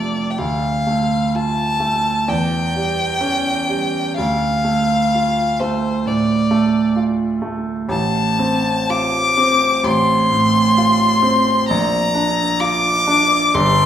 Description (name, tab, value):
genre	classical, romantic duo for violin and grand piano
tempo	64 BPM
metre	4/4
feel	rubato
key	Bb major from 7.9 s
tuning	A4 = 440 Hz
part	rich violin	melody	0.0-13.9 s	C5 to D6	-17 LUFS	left 2 dB	none
part	clear grand piano	accompaniment	0.0-13.9 s	G1 to F4	-18 LUFS	right 2 dB	none
room	wet recital hall reverb, RT60 1.4 s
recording	heard from further back in the room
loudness	-15 LUFS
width	side -10 dB against mid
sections	0.0-13.9 A section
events	none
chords	0.4 Dm; 2.3 C#dim/E; 4.2 Dm; 7.9 F/A; 11.7 Bb